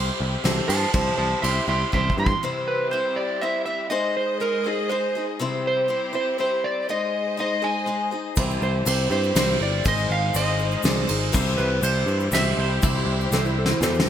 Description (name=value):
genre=folk rock and heartland rock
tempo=121 BPM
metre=3/4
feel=straight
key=C major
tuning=A4 = 439 Hz
part: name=electric slide guitar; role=melody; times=0.0-14.0 s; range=Ab4 to C6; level=-25 LUFS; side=right 2 dB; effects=ping-pong delay
part: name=bright upright piano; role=accompaniment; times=0.0-2.3, 8.4-14.1 s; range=C4 to D5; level=-34 LUFS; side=right 2 dB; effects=none
part: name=picked acoustic archtop guitar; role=accompaniment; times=0.0-14.1 s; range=C3 to C5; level=-28 LUFS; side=left 3 dB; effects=none
part: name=clear studio string section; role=sustained chords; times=0.0-14.1 s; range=Ab3 to Eb5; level=-33 LUFS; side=left 2 dB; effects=none
part: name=picked electric bass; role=bass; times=0.0-2.3, 8.4-14.1 s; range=G1 to G2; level=-25 LUFS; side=equal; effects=none
part: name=soft brush drum kit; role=drums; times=0.4-2.4, 8.4-14.1 s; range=crash cymbal, kick drum, ride cymbal, snare drum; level=-25 LUFS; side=right 1 dB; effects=gated reverb
part: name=egg shaker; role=percussion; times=8.4-14.1 s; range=none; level=-36 LUFS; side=left 10 dB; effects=none
part: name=electric slide guitar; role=second line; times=13.3-14.1 s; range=E4 to A4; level=-27 LUFS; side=right 3 dB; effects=ping-pong delay
room=moderate lush hall reverb, RT60 1.6 s, studio ambience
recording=bright 1980s-style digital production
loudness=-20 LUFS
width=side -10 dB against mid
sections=0.0-2.4 A section; 2.4-14.1 B section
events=electric slide guitar solo 0.0-2.4; drum fill 1.9-2.4, 13.3-14.1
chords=0.0 C; 3.9 Ab; 5.4 C; 6.9 Ab; 8.4 C; 9.9 Ab; 11.3 C